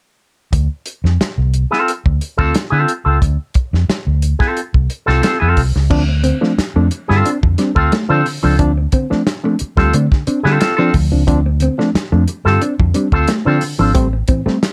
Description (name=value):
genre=funk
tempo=89 BPM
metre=4/4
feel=straight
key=D minor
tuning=A4 = 437 Hz
part: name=vintage muted fingered electric bass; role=bass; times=0.5-14.5 s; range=G#1 to D3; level=-17 LUFS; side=equal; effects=none
part: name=warm soul drum kit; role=drums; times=0.5-14.7 s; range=crash cymbal, hi-hat, kick drum, snare drum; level=-20 LUFS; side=equal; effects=none
part: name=electric guitar with an envelope filter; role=accompaniment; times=1.7-13.9 s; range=C4 to A4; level=-18 LUFS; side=equal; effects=none
part: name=overdriven reed electric piano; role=stabs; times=5.9-14.6 s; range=A2 to D4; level=-21 LUFS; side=equal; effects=phaser
part: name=mellow electric guitar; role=riff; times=6.1-14.6 s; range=F3 to C4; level=-23 LUFS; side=equal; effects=none
room=light reverb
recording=none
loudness=-15 LUFS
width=mono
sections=0.5-5.9 A section; 5.9-14.7 B section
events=none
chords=0.5 Dm7; 14.0 Am7